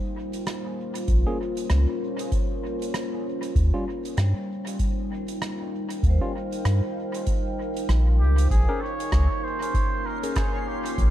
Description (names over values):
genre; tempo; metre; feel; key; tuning
ambient dub; 97 BPM; 4/4; swing 59% on 16ths; Bb dorian; A4 = 441 Hz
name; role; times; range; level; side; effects
deep dark ambient pad; sustained chords; 0.0-11.1 s; Bb3 to G5; -32 LUFS; left 1 dB; chorus, built-in reverb
vibraphone with medium mallets; arpeggios; 0.0-8.9 s; G3 to C5; -36 LUFS; right 1 dB; dub echo
soft-mallet drum kit; drums; 0.3-11.1 s; hi-hat, rim click; -36 LUFS; right 2 dB; dub echo
warm sub bass; bass; 1.1-11.1 s; Bb1 to G2; -19 LUFS; equal; none
electronic kick drum; drums; 1.1-11.1 s; none; -26 LUFS; equal; none
tine electric piano; stabs; 1.3-10.4 s; G3 to Bb4; -36 LUFS; left 1 dB; medium stereo tremolo, dub echo
trumpet with cup mute; melody; 8.2-11.1 s; G4 to Db5; -30 LUFS; right 2 dB; dub echo
backwards swelling texture; texture; 9.8-11.1 s; Db4 to C6; -37 LUFS; left 2 dB; built-in reverb
room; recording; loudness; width
small room ambience; dark, warm production; -23 LUFS; side -13 dB against mid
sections
0.0-8.5 A section; 8.5-11.1 B section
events
filter sweep on vibraphone 0.0-8.5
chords
0.0 Bbm; 3.6 Eb9; 8.5 Bbm7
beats
0.47 | 1.08 1.70 2.32 2.94 | 3.56 4.18 4.79 5.41 | 6.03 6.65 7.27 7.89 | 8.51 9.12 9.74 10.36 | 10.98